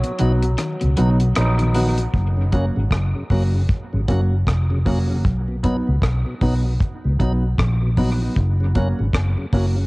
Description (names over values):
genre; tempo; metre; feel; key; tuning
dub reggae; 77 BPM; 4/4; swing 60% on 16ths; F# major; A4 = 440 Hz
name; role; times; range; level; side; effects
clear trombone; melody; 0.0-1.4 s; F#3; -32 LUFS; equal; dub echo
tonewheel organ; accompaniment; 0.0-9.8 s; F#2 to D#4; -29 LUFS; left 1 dB; overdrive, cassette tape
deep reggae drum kit; drums; 0.0-9.7 s; hi-hat, kick drum, rim click; -23 LUFS; equal; cassette tape
mellow electric guitar; accompaniment; 0.2-9.8 s; F#3 to F#4; -26 LUFS; right 1 dB; cassette tape, dub echo
electric guitar at the edge of break-up; arpeggios; 0.2-1.9 s; B2 to D#3; -31 LUFS; left 2 dB; none
vintage muted fingered electric bass; bass; 0.2-9.9 s; E#1 to C#2; -19 LUFS; equal; transformer saturation
warm trombone section; second line; 1.0-2.0 s; B2 to D#4; -29 LUFS; right 2 dB; cassette tape, dub echo
room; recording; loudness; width
light reverb; home recording on cassette; -17 LUFS; side -24 dB against mid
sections
0.0-2.1 A section; 2.1-9.9 B section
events
break 0.0-2.1; band accent 0.0-2.1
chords
0.0 B; 2.1 F#; 5.2 B; 8.4 F#